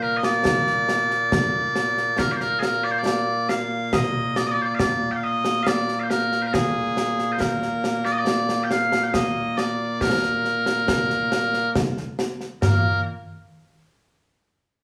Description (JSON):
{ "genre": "scottish traditional, Scottish pipe music", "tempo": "69 BPM", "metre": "3/4", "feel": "straight", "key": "Bb mixolydian", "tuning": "A4 = 440 Hz", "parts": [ { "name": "loud bright bagpipes", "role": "melody", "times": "0.0-13.0 s", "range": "Bb2 to G5", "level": "-24 LUFS", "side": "equal", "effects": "none" }, { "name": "concert snare drum, concert bass drum and concert toms", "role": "drums", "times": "0.2-12.8 s", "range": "none", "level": "-27 LUFS", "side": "equal", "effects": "none" } ], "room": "wet studio reverb, RT60 1.0 s", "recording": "band playing live in one room, small room reverb", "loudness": "-23 LUFS", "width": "mono", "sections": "0.0-12.6 A section; 12.6-14.8 B section", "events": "none", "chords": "none" }